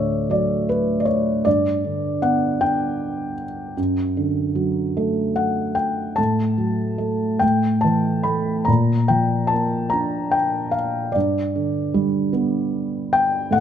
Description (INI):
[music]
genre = classical, lyrical solo piano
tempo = 47-52 BPM (dotted quarters)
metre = 6/8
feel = rubato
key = unclear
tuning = A4 = 440 Hz
[part]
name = felt-muted upright piano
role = solo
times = 0.0-13.6 s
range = D2 to B5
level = -18 LUFS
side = equal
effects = none
[sound]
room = moderate concert hall reverb, RT60 2.3 s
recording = close, detailed microphones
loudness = -18 LUFS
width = side -9 dB against mid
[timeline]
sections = 0.0-13.6 A section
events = none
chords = 0.0 D; 1.5 G; 3.8 D/F#; 6.2 F#m/A; 7.4 A5; 8.7 Bb; 11.2 G